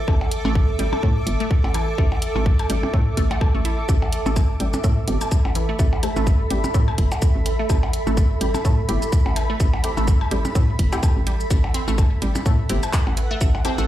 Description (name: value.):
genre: minimal techno.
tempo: 126 BPM.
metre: 4/4.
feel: swing 57% on 16ths.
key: unclear.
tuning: A4 = 440 Hz.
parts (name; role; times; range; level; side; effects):
hollow knocking FM bass; bass; 0.0-13.9 s; G1 to A2; -22 LUFS; equal; sidechain pumping.
granular cloud pad; texture; 0.0-13.9 s; A4 to D6; -28 LUFS; right 2 dB; built-in reverb, sidechain pumping.
resonant blip pluck; riff; 0.1-13.8 s; E3 to E4; -30 LUFS; right 1 dB; phaser, analog chorus, sidechain pumping, tape echo.
electronic kick drum; drums; 0.1-13.5 s; none; -18 LUFS; equal; none.
percussion blips; percussion; 0.1-13.9 s; none; -30 LUFS; left 2 dB; dub echo.
techno drum kit; drums; 0.3-13.9 s; handclaps, hi-hat, shaker; -31 LUFS; right 1 dB; overdrive.
filtered dub chord stab; stabs; 5.1-13.7 s; A3 to G4; -31 LUFS; left 1 dB; wide subtle chorus, dub echo.
room: little or no reverb.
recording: played on a big sound system in a bare room, large studio reverb.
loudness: -18 LUFS.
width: side -13 dB against mid.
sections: 0.0-13.9 A section.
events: none.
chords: 0.0 A7(no3).